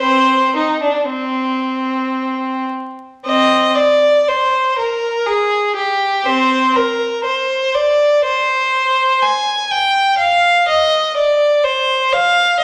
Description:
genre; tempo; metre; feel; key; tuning
classical, baroque-style suite movement for unaccompanied violin; 54-62 BPM; 3/4; rubato; C minor; A4 = 440 Hz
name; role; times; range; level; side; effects
clear violin; solo; 0.0-12.6 s; C4 to Ab5; -15 LUFS; equal; none
room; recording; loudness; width
wet recital hall reverb, RT60 1.4 s; vinyl crackle; -15 LUFS; mono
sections
0.0-3.2 A section; 3.2-12.6 B section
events
none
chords
none

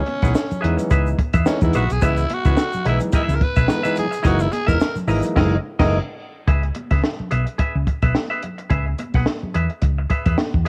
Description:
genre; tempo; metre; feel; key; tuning
funk; 108 BPM; 4/4; swing 56% on 16ths; C# dorian; A4 = 441 Hz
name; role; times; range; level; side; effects
growling tenor saxophone; melody; 0.0-5.0 s; C#4 to B4; -27 LUFS; equal; cassette tape
auto-wah clav; stabs; 0.0-6.0 s; D#3 to E4; -27 LUFS; equal; overdrive, cassette tape
semi-hollow electric guitar; accompaniment; 0.1-10.7 s; E4 to F#5; -29 LUFS; equal; cassette tape
compact cocktail drum kit; drums; 0.1-10.7 s; crash cymbal, hi-hat, kick drum, snare drum; -23 LUFS; equal; none
congas; percussion; 0.1-10.7 s; none; -35 LUFS; equal; none
hollow-body short-scale fingered electric bass; bass; 0.2-10.6 s; E1 to E2; -23 LUFS; equal; none
egg shaker; percussion; 0.2-5.3 s; none; -48 LUFS; equal; none
room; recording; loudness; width
little or no reverb; home recording on cassette; -20 LUFS; mono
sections
0.0-6.5 A section; 6.5-10.7 B section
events
tenor saxophone solo 0.0-6.5; band accent 5.4-6.5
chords
0.0 C#m7; 4.2 F#13; 6.5 C#m7

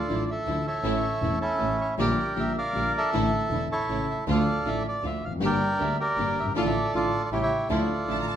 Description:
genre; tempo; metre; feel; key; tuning
tango; 158 BPM; 3/4; rubato; D harmonic minor; A4 = 438 Hz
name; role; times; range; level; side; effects
bandoneon; melody; 0.0-8.4 s; C#4 to G5; -26 LUFS; right 1 dB; none
dark concert grand piano; accompaniment; 0.1-8.2 s; E1 to A4; -29 LUFS; left 3 dB; none
warm studio string section; stabs; 0.1-8.2 s; F3 to G4; -35 LUFS; right 4 dB; none
clear double bass; bass; 0.1-8.2 s; E1 to D2; -32 LUFS; right 2 dB; none
warm studio violin section; second line; 8.1-8.4 s; A5 to Bb5; -33 LUFS; right 2 dB; none
room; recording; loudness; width
moderate recital hall reverb, RT60 1.6 s; minimal, uncompressed stereo recording; -24 LUFS; side -10 dB against mid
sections
0.0-8.4 A section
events
none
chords
0.0 Dmadd9; 0.9 A; 2.0 Gm/Bb; 3.1 Asus4; 3.9 A; 4.3 Dm; 5.4 Gm; 6.6 Dm/A; 7.3 A7; 7.7 Dmadd9

